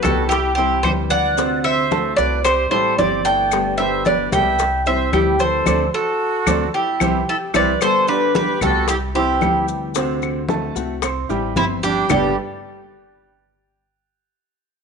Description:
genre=latin, Cuban son and guajira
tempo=112 BPM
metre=4/4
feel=straight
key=G major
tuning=A4 = 438 Hz
part: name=Cuban tres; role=melody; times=0.0-12.4 s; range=E4 to G5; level=-19 LUFS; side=equal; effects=none
part: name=breathy bright jazz flute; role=second line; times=0.0-12.3 s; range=C4 to E5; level=-25 LUFS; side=right 11 dB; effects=none
part: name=nylon-string guitar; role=accompaniment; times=0.0-12.3 s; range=G2 to G4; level=-26 LUFS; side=left 13 dB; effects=none
part: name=clear grand piano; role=arpeggios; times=0.0-12.3 s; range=C3 to C6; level=-25 LUFS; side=right 10 dB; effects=none
part: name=upright bass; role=bass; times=0.0-12.3 s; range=G1 to D2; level=-26 LUFS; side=equal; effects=none
part: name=claves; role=percussion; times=0.0-12.2 s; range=none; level=-27 LUFS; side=left 11 dB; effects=none
part: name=congas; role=percussion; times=0.0-12.2 s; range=none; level=-27 LUFS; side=equal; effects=none
part: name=maracas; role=percussion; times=0.0-12.2 s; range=none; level=-33 LUFS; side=left 16 dB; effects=none
part: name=bongos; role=percussion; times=0.1-12.2 s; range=none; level=-28 LUFS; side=left 14 dB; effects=none
room=moderate echo chamber reverb, RT60 1.4 s, studio reverb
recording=1960s-style stereo with parts hard left and right, nothing above 11.0 kHz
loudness=-16 LUFS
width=side -5 dB against mid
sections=0.0-7.8 A section; 7.8-12.1 B section; 12.1-14.2 C section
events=band accent 5.7-7.8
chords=0.3 C; 1.4 D7; 2.5 C; 3.5 Gadd9; 4.6 C; 5.7 D7; 6.7 C; 7.8 G; 8.9 C; 10.0 D7; 11.0 C; 12.1 Gadd9

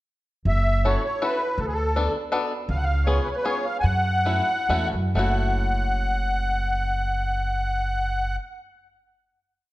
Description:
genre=musette waltz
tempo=127-163 BPM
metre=3/4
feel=straight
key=F# minor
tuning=A4 = 443 Hz
part: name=musette accordion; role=melody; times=0.5-8.4 s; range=G#4 to G#5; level=-25 LUFS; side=equal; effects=none
part: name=upright bass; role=bass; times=0.5-8.4 s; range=F#1 to F#2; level=-24 LUFS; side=equal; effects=none
part: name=bluegrass banjo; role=accompaniment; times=0.8-8.4 s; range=A3 to A4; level=-28 LUFS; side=left 2 dB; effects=none
room=moderate recital hall reverb, RT60 1.4 s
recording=dark, warm production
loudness=-22 LUFS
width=side -16 dB against mid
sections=0.5-5.2 A section; 5.2-8.0 final chord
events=slowing down 2.7-5.2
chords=0.5 F#m7; 1.6 D6; 2.7 C#7; 3.8 F#m7

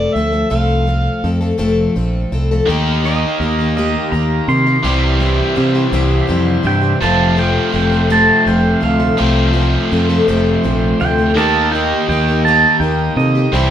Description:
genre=rock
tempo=55 BPM (dotted quarters)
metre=6/8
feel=straight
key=F major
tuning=A4 = 441 Hz
part: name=overdriven harmonica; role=melody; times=0.0-1.3 s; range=D5 to F5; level=-20 LUFS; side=right 1 dB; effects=none
part: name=picked plugged-in twelve-string acoustic guitar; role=accompaniment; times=0.0-13.7 s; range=F2 to A4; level=-19 LUFS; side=left 3 dB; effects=none
part: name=modern bright fingered electric bass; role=bass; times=0.0-13.7 s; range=F1 to C3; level=-17 LUFS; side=equal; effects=none
part: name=bright tonewheel organ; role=sustained chords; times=2.7-13.7 s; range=Bb3 to Eb6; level=-27 LUFS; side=equal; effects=overdrive, slow rotary speaker
part: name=biting overdriven guitar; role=riff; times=2.7-13.7 s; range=F2 to G4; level=-18 LUFS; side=equal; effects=none
part: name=pedal steel guitar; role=second line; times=3.1-13.5 s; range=Eb5 to C6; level=-17 LUFS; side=right 3 dB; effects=none
part: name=dark concert grand piano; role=accompaniment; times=11.4-13.7 s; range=Eb4 to C5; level=-25 LUFS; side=right 4 dB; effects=none
room=moderate large studio reverb, RT60 0.9 s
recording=band playing live in one room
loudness=-12 LUFS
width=side -10 dB against mid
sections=0.0-2.7 A section; 2.7-13.7 B section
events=pedal steel guitar solo 2.7-13.7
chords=0.0 F; 2.7 Eb; 4.8 C; 7.0 F; 11.4 Eb

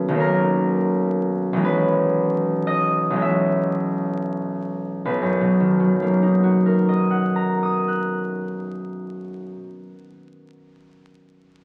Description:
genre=classical, solo harp piece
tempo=31-45 BPM (dotted quarters)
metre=6/8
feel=rubato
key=B major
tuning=A4 = 440 Hz
part: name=concert harp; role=solo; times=0.0-10.0 s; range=B1 to F#6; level=-21 LUFS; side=equal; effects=none
room=wet recital hall reverb, RT60 1.4 s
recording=very old 78 rpm record, vinyl crackle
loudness=-21 LUFS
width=mono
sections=0.0-5.1 A section; 5.1-8.5 B section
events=slowing down 0.0-5.1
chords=0.0 Bmaj9; 1.7 C#m7/B; 5.1 Bmaj7

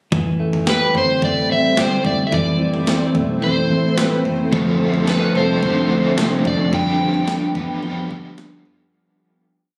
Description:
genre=dream pop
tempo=109 BPM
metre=4/4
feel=straight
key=A minor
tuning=A4 = 440 Hz
part: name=granular cloud pad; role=sustained chords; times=0.9-8.9 s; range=G3 to C5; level=-26 LUFS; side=equal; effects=built-in reverb
part: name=electric guitar at the edge of break-up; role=arpeggios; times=0.1-9.5 s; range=E3 to G4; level=-23 LUFS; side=equal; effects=subtle chorus, tape echo
part: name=vintage muted picked electric bass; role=bass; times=0.1-8.9 s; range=F1 to D2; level=-28 LUFS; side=equal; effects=none
part: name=gated 80s digital drum machine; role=drums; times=0.1-8.8 s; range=kick drum, snare drum, toms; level=-27 LUFS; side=equal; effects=gated reverb, gated reverb snare
part: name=overdriven slide guitar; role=melody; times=0.7-8.3 s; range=B4 to G5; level=-24 LUFS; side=equal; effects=tape echo
part: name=raw garage guitar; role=accompaniment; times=4.5-9.4 s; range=D3 to B4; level=-25 LUFS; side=equal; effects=overdrive, tremolo, ensemble chorus
room=light reverb, digital ambience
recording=recorded on a phone in the room, club reverb, compression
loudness=-18 LUFS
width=mono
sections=0.1-8.9 verse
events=fade-out 6.7-8.9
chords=0.1 Am7; 2.3 Amadd11; 4.5 Dm7; 6.7 G7

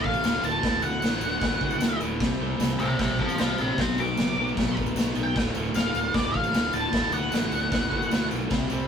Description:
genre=garage rock duo or trio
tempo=152 BPM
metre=4/4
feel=straight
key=D mixolydian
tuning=A4 = 440 Hz
part: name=octave-fuzz lead guitar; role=melody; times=0.0-8.3 s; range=C5 to D6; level=-27 LUFS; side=equal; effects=distortion
part: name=overdriven electric guitar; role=riff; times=0.0-8.9 s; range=D2 to C4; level=-29 LUFS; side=equal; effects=spring reverb
part: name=fuzz fingered electric bass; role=bass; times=0.0-8.9 s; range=D1 to D2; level=-32 LUFS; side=equal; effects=overdrive
part: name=raw garage drum kit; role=drums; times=0.0-8.6 s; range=crash cymbal, kick drum, snare drum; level=-27 LUFS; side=equal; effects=none
part: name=tambourine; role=percussion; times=0.1-8.8 s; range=none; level=-46 LUFS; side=left 6 dB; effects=none
room=moderate booth ambience, RT60 0.2 s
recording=rough rehearsal-room recording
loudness=-23 LUFS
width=side -7 dB against mid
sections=0.0-8.9 A section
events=none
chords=0.0 D; 2.2 C; 3.8 Bm; 5.4 D

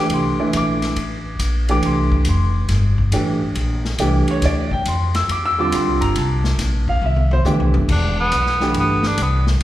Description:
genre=modal jazz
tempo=139 BPM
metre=4/4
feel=swing 67% on 8ths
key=unclear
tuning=A4 = 439 Hz
part: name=warm grand piano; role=accompaniment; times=0.0-9.2 s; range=D3 to E6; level=-20 LUFS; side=right 1 dB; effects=none
part: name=upright bass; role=bass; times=0.0-9.6 s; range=E1 to F2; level=-19 LUFS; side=equal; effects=none
part: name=vintage drum kit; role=drums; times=0.1-9.6 s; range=crash cymbal, hi-hat, kick drum, ride cymbal, snare drum, toms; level=-26 LUFS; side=left 2 dB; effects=none
part: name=clear tenor saxophone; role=melody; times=7.9-9.5 s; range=B3 to D4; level=-20 LUFS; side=right 1 dB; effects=none
room=wet recital hall reverb, RT60 1.6 s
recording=recorded in a church or concert hall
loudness=-16 LUFS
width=side -14 dB against mid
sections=0.0-7.9 A section; 7.9-9.6 A section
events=drum fill 7.0-7.9; tenor saxophone solo 7.9-9.6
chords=0.0 Am7; 1.0 Csus2; 7.9 Em7

